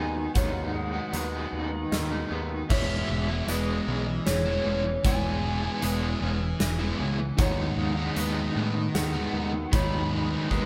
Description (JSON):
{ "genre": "post-rock", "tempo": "77 BPM", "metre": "3/4", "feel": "straight", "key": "unclear", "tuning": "A4 = 439 Hz", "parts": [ { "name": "overdriven slide guitar", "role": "melody", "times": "0.0-10.7 s", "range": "C#5 to B5", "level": "-38 LUFS", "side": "equal", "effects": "none" }, { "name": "granular cloud pad", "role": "sustained chords", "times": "0.0-10.7 s", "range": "E4 to G#5", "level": "-47 LUFS", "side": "equal", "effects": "none" }, { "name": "clean electric guitar", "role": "arpeggios", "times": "0.0-10.7 s", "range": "E2 to C#4", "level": "-38 LUFS", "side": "equal", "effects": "none" }, { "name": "felt-muted upright piano", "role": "arpeggios", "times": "0.0-10.7 s", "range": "G#4 to E5", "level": "-42 LUFS", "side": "equal", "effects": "tape echo" }, { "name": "overdriven electric guitar", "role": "riff", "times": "0.0-10.7 s", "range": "D#3 to E4", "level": "-36 LUFS", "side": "equal", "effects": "tremolo" }, { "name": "growling picked electric bass", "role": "bass", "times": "0.0-10.7 s", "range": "E1 to A2", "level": "-34 LUFS", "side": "equal", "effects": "overdrive" }, { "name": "huge arena drum kit", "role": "drums", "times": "0.4-10.7 s", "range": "crash cymbal, hi-hat, kick drum, snare drum", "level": "-32 LUFS", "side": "equal", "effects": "none" }, { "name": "sludgy distorted guitar", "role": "riff", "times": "2.7-10.7 s", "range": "D#3 to E4", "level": "-33 LUFS", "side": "equal", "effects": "overdrive" } ], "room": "moderate studio reverb, RT60 0.7 s", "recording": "band playing live in one room", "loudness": "-27 LUFS", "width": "mono", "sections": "0.0-10.7 A section", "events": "drum fill 10.5", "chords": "0.0 G#m7/D#; 2.7 E6; 7.4 G#m7/D#" }